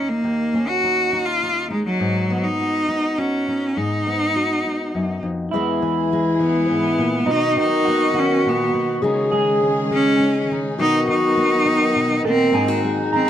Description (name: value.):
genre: acoustic folk-pop ballad.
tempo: 102 BPM.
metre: 3/4.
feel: straight.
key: unclear.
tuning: A4 = 440 Hz.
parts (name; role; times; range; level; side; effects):
clear cello; melody; 0.0-13.3 s; Gb3 to Gb4; -20 LUFS; equal; none.
fingerpicked steel-string acoustic guitar; accompaniment; 0.0-13.3 s; Eb2 to Gb4; -23 LUFS; left 2 dB; none.
mellow clarinet; second line; 5.5-13.3 s; Eb4 to Ab4; -22 LUFS; left 2 dB; none.
warm symphonic string section; sustained chords; 5.5-13.3 s; D#3 to G#4; -29 LUFS; left 1 dB; none.
electric guitar through a small old amp; arpeggios; 5.5-13.3 s; D#4 to Bb5; -24 LUFS; right 5 dB; harmonic tremolo.
room: light reverb.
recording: close, detailed microphones.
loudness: -17 LUFS.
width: side -10 dB against mid.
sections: 0.0-5.5 A section; 5.5-12.5 B section.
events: none.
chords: 0.0 Ebm7; 2.0 Abm7; 5.5 E; 7.3 B; 9.0 Dbsus2; 10.8 B; 12.5 Ab7.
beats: | 0.24 0.83 1.41 | 2.00 2.58 3.17 | 3.76 4.34 4.93 | 5.52 6.10 6.69 | 7.27 7.86 8.44 | 9.03 9.62 10.20 | 10.78 11.37 11.95 | 12.54 13.12.